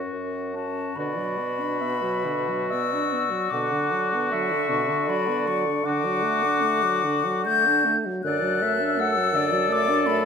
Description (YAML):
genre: classical, slow romantic movement for wind quintet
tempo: 63-84 BPM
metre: 3/4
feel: rubato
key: B minor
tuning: A4 = 441 Hz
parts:
  - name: mellow hollow concert flute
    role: melody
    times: 0.0-10.3 s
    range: A#4 to G6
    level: -25 LUFS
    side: left 8 dB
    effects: none
  - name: warm oboe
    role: second line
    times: 0.0-10.3 s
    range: F#4 to A4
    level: -29 LUFS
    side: left 2 dB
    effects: none
  - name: mellow French horn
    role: accompaniment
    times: 0.0-10.3 s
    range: B2 to D4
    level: -30 LUFS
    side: equal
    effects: none
  - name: warm clarinet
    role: accompaniment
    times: 0.0-10.3 s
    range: D5 to F#5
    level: -30 LUFS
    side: right 6 dB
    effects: none
  - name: mellow bassoon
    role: bass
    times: 0.0-10.3 s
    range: F#2 to D3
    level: -29 LUFS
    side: right 2 dB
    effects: none
room: wet recital hall reverb, RT60 1.6 s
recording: none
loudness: -21 LUFS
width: side -6 dB against mid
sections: 1.0-10.3 A section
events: none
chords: 0.0 F#5; 1.0 Bm; 5.9 D; 8.3 D/F#